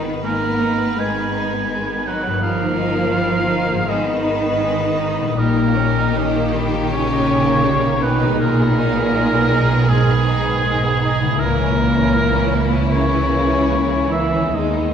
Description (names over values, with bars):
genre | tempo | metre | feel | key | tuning
classical, slow romantic movement for symphony orchestra | 69-84 BPM | 4/4 | rubato | unclear | A4 = 440 Hz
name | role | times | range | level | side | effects
rich chamber violin section | melody | 0.0-14.9 s | D#4 to Cb5 | -29 LUFS | left 4 dB | none
clear chamber violin section | second line | 0.0-14.9 s | G3 to Eb4 | -26 LUFS | left 2 dB | none
rich symphonic viola section | accompaniment | 0.0-14.9 s | Eb3 to G#3 | -26 LUFS | right 2 dB | none
concert harp | arpeggios | 0.0-14.9 s | G2 to Eb5 | -26 LUFS | left 6 dB | none
clear studio cello section | bass | 0.0-14.9 s | G#2 to Bb3 | -21 LUFS | equal | none
warm chamber double bass section | bass | 0.0-14.9 s | G1 to D#2 | -22 LUFS | right 2 dB | none
timpani | percussion | 0.0-0.6 s | none | barely audible | none | none
warm cor anglais | second line | 0.2-14.9 s | G#4 to Ab5 | -21 LUFS | right 1 dB | none
room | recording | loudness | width
wet scoring stage reverb, RT60 1.7 s | heard from further back in the room | -15 LUFS | side -8 dB against mid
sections
0.0-14.9 A section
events
none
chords
0.0 Abm; 2.4 Eb/G; 3.9 Abm; 5.4 D#7/A#; 8.4 G#m/B; 11.4 A#dim/C#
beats
0.25 1.00 1.72 | 2.44 3.16 3.89 4.63 | 5.39 6.18 6.93 7.66 | 8.41 9.15 9.90 10.66 | 11.41 12.16 12.92 13.71 | 14.54